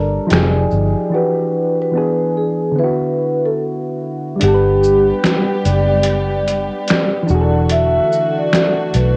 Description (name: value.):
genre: lo-fi hip hop.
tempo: 73 BPM.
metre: 4/4.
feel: swing 63% on 16ths.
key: unclear.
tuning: A4 = 443 Hz.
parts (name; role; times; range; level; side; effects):
vibraphone with soft mallets; melody; 0.0-9.2 s; G4 to E5; -20 LUFS; equal; cassette tape.
soft electric-piano-like synth keys; accompaniment; 0.0-9.2 s; D3 to F#5; -22 LUFS; equal; chorus, cassette tape.
vintage muted fingered electric bass; bass; 0.0-9.2 s; E1 to B1; -19 LUFS; equal; none.
trip hop sampler-style drum kit; drums; 0.3-9.2 s; finger snaps, hi-hat, shaker, snare drum; -20 LUFS; equal; overdrive, cassette tape.
warm chamber string section; sustained chords; 4.4-9.2 s; D3 to G4; -26 LUFS; equal; cassette tape.
room: light reverb, digital ambience.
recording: home recording on cassette.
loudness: -16 LUFS.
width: mono.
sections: 0.0-4.4 A section; 4.4-9.2 B section.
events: break 1.1-4.4; kick muted 4.4-9.2.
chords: 0.3 Fm9; 1.1 Em9; 1.9 E7; 2.8 D69; 4.4 Gmaj7; 7.3 E9sus4.